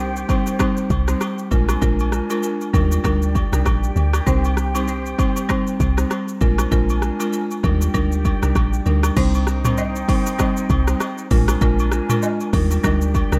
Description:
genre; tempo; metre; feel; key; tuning
afrobeats; 98 BPM; 4/4; swing 58% on 16ths; C minor; A4 = 442 Hz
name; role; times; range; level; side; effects
bright large flute ensemble; sustained chords; 0.0-13.4 s; D4 to Ab5; -34 LUFS; equal; none
deep log drum bass; bass; 0.0-13.4 s; Bb1 to Eb2; -22 LUFS; equal; none
afro-pop drum kit; drums; 0.2-13.4 s; crash cymbal, hi-hat, kick drum, rim click, shaker, toms; -24 LUFS; equal; tape echo
buzzing marimba with medium hard mallets; accompaniment; 0.3-13.4 s; G3 to C5; -25 LUFS; equal; tape echo
agogo bells and woodblock; percussion; 0.3-13.3 s; none; -33 LUFS; equal; tape echo
room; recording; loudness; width
digital ambience; echo-heavy mix; -19 LUFS; mono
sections
0.0-9.2 A section; 9.2-13.4 B section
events
none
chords
0.0 Cm; 1.5 Bb7; 2.7 Ebmaj7; 4.3 Cm; 6.4 Bb7; 7.6 Ebmaj7; 9.2 Cm; 11.3 Bb7; 12.5 Ebmaj7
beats
0.59 1.21 | 1.82 2.43 3.04 3.66 | 4.27 4.88 5.49 6.11 | 6.72 7.33 7.94 8.55 | 9.17 9.78 10.39 11.00 | 11.62 12.23 12.84

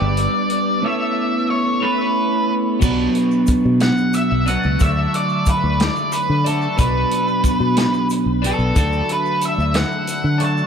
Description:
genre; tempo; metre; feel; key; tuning
psychedelic rock; 61 BPM (dotted quarters); 6/8; straight; B minor; A4 = 440 Hz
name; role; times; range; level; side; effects
octave-fuzz lead guitar; melody; 0.0-10.7 s; A4 to A5; -21 LUFS; equal; distortion, tape echo
mellow tonewheel organ; sustained chords; 0.0-2.8 s; G3 to D5; -28 LUFS; right 3 dB; slow rotary speaker
twelve-string electric guitar; riff; 0.0-10.7 s; B2 to C#5; -20 LUFS; equal; phaser, double-tracked left and right
fingered electric bass; bass; 0.0-10.6 s; G1 to D3; -20 LUFS; equal; none
vintage drum kit; drums; 0.2-10.6 s; crash cymbal, hi-hat, kick drum, snare drum; -22 LUFS; equal; none
tube shaker; percussion; 2.8-10.7 s; none; -38 LUFS; left 9 dB; tape echo
room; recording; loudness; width
light reverb, studio reverb; echo-heavy mix; -16 LUFS; side -7 dB against mid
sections
0.0-2.8 A section; 2.8-10.7 B section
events
lead electric guitar solo 2.8-10.7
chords
0.0 G; 0.8 Aadd9; 2.8 Bm; 4.8 D; 6.8 Bm; 8.8 D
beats
| 0.83 1.83 | 2.82 3.81 | 4.80 5.79 | 6.78 7.77 | 8.76 9.75

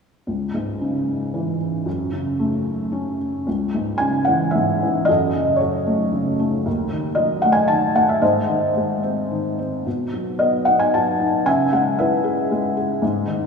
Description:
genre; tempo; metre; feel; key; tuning
classical, lyrical solo piano; 114 BPM; 3/4; rubato; C# minor; A4 = 438 Hz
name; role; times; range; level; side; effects
felt-muted upright piano; solo; 0.3-13.5 s; C#2 to A5; -18 LUFS; equal; none
room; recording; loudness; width
wet cathedral reverb, RT60 4.0 s; recorded in a church or concert hall, small room ambience; -18 LUFS; side -5 dB against mid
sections
0.3-3.5 A section; 3.5-13.5 B section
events
none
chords
0.3 C#m; 1.9 F#m; 3.5 C#m; 5.1 F#m; 6.7 D#dim; 8.2 G#; 9.9 B; 11.5 C#m7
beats
| 0.27 0.81 1.34 | 1.86 2.39 2.92 | 3.47 4.01 4.55 | 5.09 5.62 6.14 | 6.66 7.18 7.70 | 8.22 8.76 9.30 | 9.86 10.40 10.94 | 11.47 11.99 12.51 | 13.02

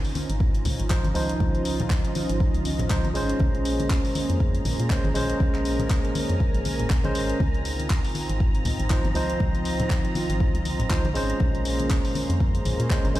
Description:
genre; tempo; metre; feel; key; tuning
deep house; 120 BPM; 4/4; swing 57% on 16ths; unclear; A4 = 440 Hz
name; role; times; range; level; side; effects
warm analog pad; sustained chords; 0.0-13.2 s; Bb3 to C5; -34 LUFS; right 1 dB; chorus, sidechain pumping
deep house drum kit; drums; 0.0-13.2 s; handclaps, hi-hat; -34 LUFS; left 1 dB; none
granular cloud pad; texture; 0.0-13.2 s; Db4 to C6; -36 LUFS; right 2 dB; built-in reverb, sidechain pumping
soft string machine; texture; 0.0-13.2 s; Bb5; -38 LUFS; right 1 dB; ensemble chorus, sidechain pumping
congas; percussion; 0.2-13.1 s; none; -32 LUFS; left 2 dB; none
organ-like FM bass; bass; 0.3-13.2 s; Ab1 to Bb2; -27 LUFS; equal; none
electronic kick drum; drums; 0.4-13.0 s; none; -24 LUFS; equal; none
barky tine electric piano; stabs; 0.9-13.2 s; F3 to C5; -29 LUFS; right 1 dB; overdrive, vintage 12-bit sampler grit, sidechain pumping, low-pass filter, ping-pong delay
room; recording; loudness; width
little or no reverb; played on a big sound system in a bare room, stone room reverb; -22 LUFS; side -15 dB against mid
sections
0.0-13.2 A section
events
none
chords
0.0 Dbmaj9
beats
0.40 0.90 | 1.40 1.90 2.40 2.90 | 3.40 3.90 4.40 4.90 | 5.40 5.90 6.40 6.90 | 7.40 7.90 8.40 8.90 | 9.40 9.90 10.40 10.90 | 11.40 11.90 12.40 12.90

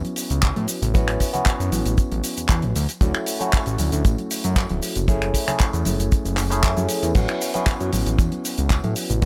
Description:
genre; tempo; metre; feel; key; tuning
nu-disco, nu disco; 116 BPM; 4/4; straight; A major; A4 = 440 Hz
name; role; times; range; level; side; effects
overdriven tine electric piano; accompaniment; 0.0-9.3 s; A3 to G#4; -29 LUFS; equal; phaser, delay
fat analog bass; bass; 0.0-9.3 s; D1 to A2; -25 LUFS; equal; none
damped 70s drum kit; drums; 0.0-9.3 s; crash cymbal, finger snaps, handclaps, hi-hat, shaker; -29 LUFS; equal; none
congas and tambourine; percussion; 0.0-9.3 s; none; -34 LUFS; equal; none
kick drum; drums; 0.4-9.3 s; none; -21 LUFS; equal; none
room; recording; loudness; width
studio reverb; none; -22 LUFS; mono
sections
0.0-9.3 A section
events
none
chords
0.0 A69; 2.8 Dmaj7; 5.1 F#m9; 7.2 A69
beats
0.43 | 0.95 1.46 1.98 2.50 | 3.02 3.53 4.05 4.57 | 5.08 5.60 6.12 6.64 | 7.15 7.67 8.19 8.71 | 9.22

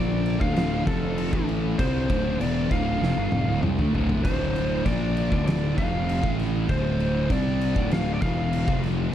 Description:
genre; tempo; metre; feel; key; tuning
stoner and doom metal; 98 BPM; 4/4; straight; D minor; A4 = 439 Hz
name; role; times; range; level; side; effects
fuzz lead guitar; melody; 0.0-8.8 s; A4 to F5; -31 LUFS; equal; distortion
tonewheel organ; sustained chords; 0.0-9.1 s; D3 to A4; -38 LUFS; right 2 dB; none
thick fuzz guitar; riff; 0.0-9.1 s; D2 to C4; -27 LUFS; left 1 dB; distortion
thick fuzz guitar; riff; 0.0-9.1 s; D2 to C4; -32 LUFS; equal; distortion
fuzz fingered electric bass; bass; 0.0-9.1 s; D1 to D2; -29 LUFS; equal; overdrive
oversized low-tuned drum kit; drums; 0.3-9.0 s; crash cymbal, kick drum, snare drum, toms; -28 LUFS; equal; none
room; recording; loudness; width
light reverb; dark, warm production; -22 LUFS; side -10 dB against mid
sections
0.0-9.1 A section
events
drum fill 3.0-4.2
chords
0.0 Dm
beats
0.56 1.17 | 1.78 2.40 3.01 3.62 | 4.24 4.85 5.46 6.07 | 6.69 7.30 7.91 8.52 | 9.13

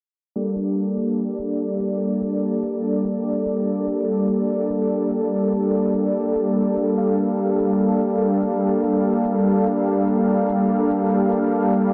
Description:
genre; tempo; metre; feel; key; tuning
heavy wobble dubstep; 145 BPM; 4/4; half-time; G minor; A4 = 440 Hz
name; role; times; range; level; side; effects
supersaw chords; sustained chords; 0.4-11.9 s; G3 to F5; -21 LUFS; equal; none
electronic hi-hat; drums; 0.6-11.8 s; none; -48 LUFS; equal; none
room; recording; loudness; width
moderate plate reverb, RT60 1.9 s, digital ambience; dense, heavily limited modern master, low-pass filter; -21 LUFS; mono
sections
0.4-11.9 A section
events
filter sweep 0.4-11.9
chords
0.4 Gmadd9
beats
| 0.36 0.77 1.18 1.60 | 2.01 2.42 2.84 3.25 | 3.67 4.08 4.49 4.91 | 5.32 5.74 6.15 6.56 | 6.98 7.39 7.80 8.22 | 8.63 9.04 9.46 9.87 | 10.29 10.70 11.11 11.53

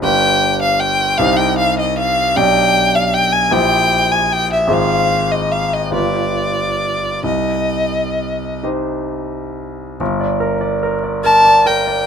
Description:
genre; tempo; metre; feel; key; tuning
classical, romantic duo for violin and grand piano; 42-53 BPM (dotted quarters); 6/8; rubato; C minor; A4 = 439 Hz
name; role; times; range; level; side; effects
rich violin; melody; 0.0-12.1 s; D5 to A5; -14 LUFS; left 1 dB; none
clear concert grand piano; accompaniment; 0.0-12.1 s; G1 to D5; -18 LUFS; right 1 dB; none
room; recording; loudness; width
light reverb; close, detailed microphones; -13 LUFS; side -7 dB against mid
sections
0.0-10.0 A section; 10.0-12.1 B section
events
none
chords
0.0 G; 1.2 Cm; 2.4 G/B; 3.5 C7/Bb; 4.7 Fm/Ab; 5.9 G7; 7.3 Cm; 10.0 Gm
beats
| 0.04 1.21 | 2.38 3.53 | 4.69 5.93 | 7.26 8.65 | 10.00 11.24

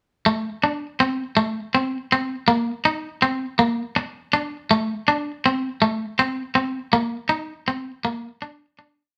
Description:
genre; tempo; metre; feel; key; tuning
highlife; 108 BPM (dotted quarters); 12/8; straight; unclear; A4 = 440 Hz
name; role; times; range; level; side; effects
twangy electric guitar; solo; 0.3-9.0 s; A3 to Eb4; -22 LUFS; equal; none
room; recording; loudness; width
moderate studio reverb, RT60 0.8 s; band playing live in one room; -23 LUFS; mono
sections
0.3-9.2 groove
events
fade-out 6.9-9.2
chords
none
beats
| 0.25 0.81 1.36 1.92 | 2.48 3.03 3.59 4.15 | 4.70 5.26 5.82 6.38 | 6.93 7.49 8.05 8.61

